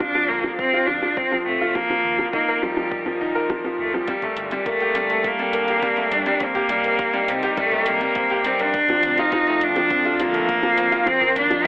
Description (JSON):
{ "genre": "piano and strings electronica", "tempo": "103 BPM", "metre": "4/4", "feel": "straight", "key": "unclear", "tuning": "A4 = 440 Hz", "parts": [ { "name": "rich cello", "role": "melody", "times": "0.0-11.7 s", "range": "G3 to Eb4", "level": "-20 LUFS", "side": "equal", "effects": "none" }, { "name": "dark chamber string section", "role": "sustained chords", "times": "0.0-11.7 s", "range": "Bb2 to Bb4", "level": "-31 LUFS", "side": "left 1 dB", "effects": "sidechain pumping" }, { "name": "clear upright piano", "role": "riff", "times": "0.0-11.7 s", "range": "F3 to Bb4", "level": "-23 LUFS", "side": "equal", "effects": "none" }, { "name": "electronic kick drum", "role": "drums", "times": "0.0-11.2 s", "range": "none", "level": "-32 LUFS", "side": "equal", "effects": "none" }, { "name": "dark detuned saw bass", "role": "bass", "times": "0.3-11.6 s", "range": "D1 to G2", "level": "-42 LUFS", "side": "equal", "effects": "sidechain pumping" }, { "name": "deep house drum kit", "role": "drums", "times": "1.9-11.6 s", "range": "hi-hat, toms", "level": "-36 LUFS", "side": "equal", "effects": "none" } ], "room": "light reverb, small room ambience", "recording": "telephone sound", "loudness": "-18 LUFS", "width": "side -20 dB against mid", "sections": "0.0-11.7 A section", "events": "fade-in on string section 0.0-11.7", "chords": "0.0 Dm7; 1.8 Ebsus2; 4.1 Gmadd9; 6.4 Cm7; 8.7 Dm7; 11.1 Ebsus2", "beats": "0.00 0.59 1.17 | 1.75 2.33 2.92 3.50 | 4.08 4.66 5.25 5.83 | 6.41 6.99 7.58 8.16 | 8.74 9.32 9.91 10.49 | 11.07 11.65" }